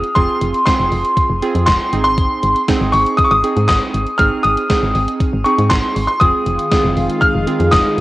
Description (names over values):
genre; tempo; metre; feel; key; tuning
synth-pop; 119 BPM; 4/4; straight; F minor; A4 = 440 Hz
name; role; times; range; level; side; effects
clear baby grand piano; melody; 0.0-8.0 s; C6 to F6; -16 LUFS; equal; analog delay, shimmer reverb
warm analog keys; accompaniment; 0.0-8.0 s; C4 to Ab4; -20 LUFS; right 4 dB; chorus, cassette tape, shimmer reverb
solid FM bass; bass; 0.0-8.0 s; F1 to Ab2; -18 LUFS; equal; none
gated 80s digital drum machine; drums; 0.0-8.0 s; handclaps, hi-hat, kick drum, snare drum; -19 LUFS; equal; gated reverb, gated reverb snare, cassette tape
lush unison pad; sustained chords; 6.2-8.0 s; Eb3 to F4; -20 LUFS; left 1 dB; chorus, cassette tape
room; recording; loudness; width
moderate spring reverb, RT60 1.2 s; home recording on cassette; -12 LUFS; side -18 dB against mid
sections
0.0-8.0 A section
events
none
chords
0.0 Fm; 1.9 Ab; 6.2 Fm7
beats
| 0.16 0.67 1.17 1.68 | 2.18 2.68 3.19 3.69 | 4.20 4.70 5.21 5.71 | 6.21 6.72 7.22 7.73